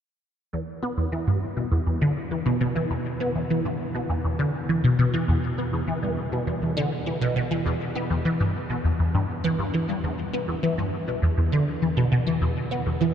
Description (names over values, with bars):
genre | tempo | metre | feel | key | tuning
ambient | 101 BPM | 4/4 | straight | E minor | A4 = 440 Hz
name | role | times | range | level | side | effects
resonant blip pluck | solo | 0.5-13.1 s | E2 to B3 | -22 LUFS | equal | phaser, ensemble chorus, ping-pong delay
room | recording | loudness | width
wet huge ambient reverb, RT60 8.2 s | dark, warm production | -23 LUFS | side -9 dB against mid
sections
0.5-10.0 A section; 10.0-13.1 B section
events
none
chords
none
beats
| 0.53 1.12 1.72 2.31 | 2.91 3.50 4.10 4.69 | 5.28 5.88 6.47 7.07 | 7.66 8.25 8.85 9.44 | 10.04 10.63 11.22 11.82 | 12.41 13.01